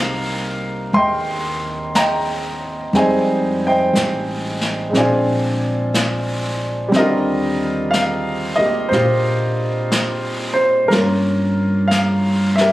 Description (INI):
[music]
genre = jazz ballad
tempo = 60 BPM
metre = 4/4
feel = swing 68% on 8ths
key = unclear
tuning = A4 = 440 Hz
[part]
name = warm grand piano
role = accompaniment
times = 0.0-12.7 s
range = D3 to C6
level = -18 LUFS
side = equal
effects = none
[part]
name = upright bass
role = bass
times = 0.0-12.7 s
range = A1 to Bb2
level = -22 LUFS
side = equal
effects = none
[part]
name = jazz brush drum kit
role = drums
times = 0.9-12.7 s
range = brushed snare drum, hi-hat, snare drum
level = -25 LUFS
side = equal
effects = none
[sound]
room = light reverb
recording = recorded on a phone in the room, studio reverb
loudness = -16 LUFS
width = side -16 dB against mid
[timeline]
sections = 0.0-12.7 A section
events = none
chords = 0.0 Cm7; 2.9 Fm9; 4.9 Bb9; 6.9 Ebmaj13; 10.9 Gm7b5